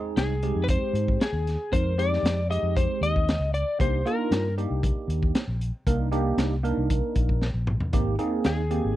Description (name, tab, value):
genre	straight-eighth soul blues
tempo	116 BPM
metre	4/4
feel	straight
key	C minor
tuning	A4 = 442 Hz
part	tine electric piano	accompaniment	0.0-9.0 s	Ab3 to Bb4	-29 LUFS	right 4 dB	phaser
part	electric slide guitar	melody	0.2-4.5, 8.5-9.0 s	Ab4 to Eb5	-28 LUFS	left 3 dB	none
part	fingered electric bass	bass	0.2-9.0 s	Ab1 to Ab2	-26 LUFS	equal	none
part	crunchy breakbeat drum kit	drums	0.2-8.8 s	hi-hat, kick drum, snare drum, toms	-26 LUFS	equal	none
room	little or no reverb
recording	dry, close 1970s-style studio recording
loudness	-23 LUFS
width	side -14 dB against mid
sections	0.0-9.0 A section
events	drum fill 7.4-7.9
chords	0.0 Fm7; 3.8 Cm7; 7.9 Abmaj7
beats	0.17 0.69 1.20 | 1.72 2.24 2.76 3.28 | 3.79 4.31 4.83 5.35 | 5.87 6.38 6.90 7.42 | 7.93 8.45